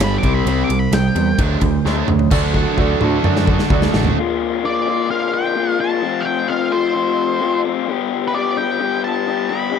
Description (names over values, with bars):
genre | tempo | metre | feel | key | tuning
classic rock | 130 BPM | 4/4 | straight | unclear | A4 = 438 Hz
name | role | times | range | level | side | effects
octave-fuzz lead guitar | melody | 0.0-1.4, 4.7-9.8 s | B4 to D6 | -22 LUFS | equal | distortion, tape echo
cranked stack guitar | riff | 0.0-4.2 s | G2 to F#4 | -21 LUFS | right 16 dB | overdrive
raw garage guitar | riff | 0.0-9.8 s | F2 to A4 | -20 LUFS | left 9 dB | overdrive
overdriven picked electric bass | bass | 0.0-4.1 s | G1 to F#2 | -20 LUFS | equal | none
big rock drum kit | drums | 0.0-4.2 s | crash cymbal, kick drum, ride cymbal, snare drum, toms | -20 LUFS | equal | none
bright upright piano | accompaniment | 2.3-4.1 s | F#4 to D5 | -24 LUFS | right 10 dB | none
biting overdriven guitar | riff | 2.3-4.2 s | D3 to D4 | -22 LUFS | right 1 dB | none
room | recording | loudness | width
studio reverb | dry, close 1970s-style studio recording | -15 LUFS | side -7 dB against mid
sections
0.0-2.3 A section; 2.3-4.2 B section; 4.2-9.8 C section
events
lead electric guitar solo 0.0-2.3; drum fill 1.9-2.3, 2.3-4.2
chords
0.2 C5; 1.4 D; 4.2 Bb; 6.0 F; 7.9 G